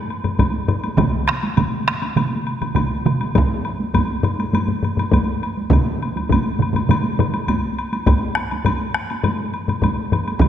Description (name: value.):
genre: japanese traditional, taiko drum ensemble.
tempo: 102 BPM.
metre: 4/4.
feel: straight.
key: none.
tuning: none.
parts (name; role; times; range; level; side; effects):
woodblock; percussion; 0.1-10.5 s; none; -27 LUFS; left 3 dB; none.
solo taiko drums; percussion; 0.2-10.3 s; none; -22 LUFS; left 4 dB; none.
taiko ensemble; percussion; 0.2-10.5 s; none; -24 LUFS; right 1 dB; none.
taiko ensemble; percussion; 0.4-10.5 s; none; -21 LUFS; right 1 dB; none.
taiko ensemble; percussion; 1.0-10.5 s; none; -21 LUFS; right 4 dB; none.
room: wet scoring stage reverb, RT60 1.6 s.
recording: none.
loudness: -17 LUFS.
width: side -10 dB against mid.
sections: 0.0-10.5 A section.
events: none.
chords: none.